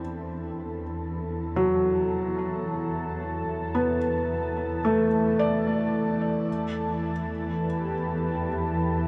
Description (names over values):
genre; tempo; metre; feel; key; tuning
ambient; 55 BPM; 4/4; straight; unclear; A4 = 441 Hz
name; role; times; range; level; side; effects
warm analog pad; sustained chords; 0.0-9.1 s; E3 to B5; -32 LUFS; equal; chorus, shimmer reverb
felt-muted upright piano; arpeggios; 0.0-9.1 s; F#3 to D5; -29 LUFS; equal; tape echo, shimmer reverb
dark symphonic cello section; bass; 0.0-9.1 s; E2; -37 LUFS; equal; none
room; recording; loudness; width
wet huge ambient reverb, RT60 7.1 s; dark, warm production; -27 LUFS; mono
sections
0.0-9.1 A section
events
none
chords
0.0 D7/E; 6.5 Em